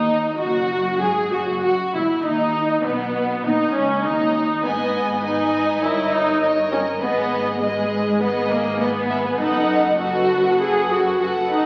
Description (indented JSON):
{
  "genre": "quick classical-period movement for string orchestra",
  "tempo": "100 BPM",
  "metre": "4/4",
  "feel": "rubato",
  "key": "unclear",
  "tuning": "A4 = 440 Hz",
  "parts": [
    { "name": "clear studio violin section", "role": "melody", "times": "0.0-11.7 s", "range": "B3 to G#5", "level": "-28 LUFS", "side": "equal", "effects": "none" },
    { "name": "rich studio violin section", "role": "second line", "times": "0.0-11.7 s", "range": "B3 to D#5", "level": "-30 LUFS", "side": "equal", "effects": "none" },
    { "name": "warm studio viola section", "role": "accompaniment", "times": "0.0-11.7 s", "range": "G#3 to G#4", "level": "-22 LUFS", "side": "equal", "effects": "none" },
    { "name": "clear studio cello section", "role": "bass", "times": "0.0-11.7 s", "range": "C#2 to B2", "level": "-33 LUFS", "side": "equal", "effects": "none" },
    { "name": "rich studio double bass section", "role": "bass", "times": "0.0-11.7 s", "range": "E1 to D#2", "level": "-36 LUFS", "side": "equal", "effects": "none" }
  ],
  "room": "wet scoring stage reverb, RT60 1.7 s",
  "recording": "very old 78 rpm record, vinyl crackle",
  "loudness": "-20 LUFS",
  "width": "mono",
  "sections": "0.0-11.7 A section",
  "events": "none",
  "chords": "0.0 D#m; 1.0 Eadd9; 2.2 B; 4.6 G#m; 5.8 D#7/G; 7.0 G#m; 9.4 B7/F#",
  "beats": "0.40 1.02 1.64 | 2.24 2.84 3.44 4.04 | 4.65 5.24 5.83 6.42 | 7.01 7.61 8.21 8.80 | 9.40 10.00 10.60 11.21"
}